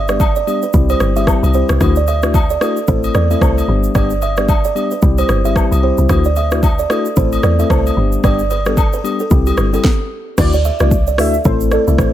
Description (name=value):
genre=afrobeats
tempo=112 BPM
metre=4/4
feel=swing 58% on 16ths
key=unclear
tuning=A4 = 444 Hz
part: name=buzzing kalimba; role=riff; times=0.0-12.1 s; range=G4 to E5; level=-20 LUFS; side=right 8 dB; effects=ping-pong delay
part: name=deep log drum bass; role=bass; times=0.0-12.1 s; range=G1 to E2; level=-16 LUFS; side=equal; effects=none
part: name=mellow tine electric piano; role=accompaniment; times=0.1-12.1 s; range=G3 to A4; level=-19 LUFS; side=left 7 dB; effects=none
part: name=afro-pop drum kit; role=drums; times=0.1-12.1 s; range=crash cymbal, hi-hat, kick drum, rim click, shaker, snare drum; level=-17 LUFS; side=equal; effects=none
part: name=agogo bells and woodblock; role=percussion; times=0.2-9.8 s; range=none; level=-24 LUFS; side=left 5 dB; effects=none
part: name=warm velvety synth lead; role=melody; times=10.4-11.9 s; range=A4 to E5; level=-20 LUFS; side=right 1 dB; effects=chorus
room=digital ambience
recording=none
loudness=-12 LUFS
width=side -12 dB against mid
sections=0.0-10.4 A section; 10.4-12.1 B section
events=stop 9.8-10.4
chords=0.0 G; 0.7 C; 1.8 Dadd9; 2.9 Am; 3.7 G; 5.0 C; 6.1 Dadd9; 7.2 Am; 8.0 G; 9.3 C; 10.4 Dadd9; 11.4 Am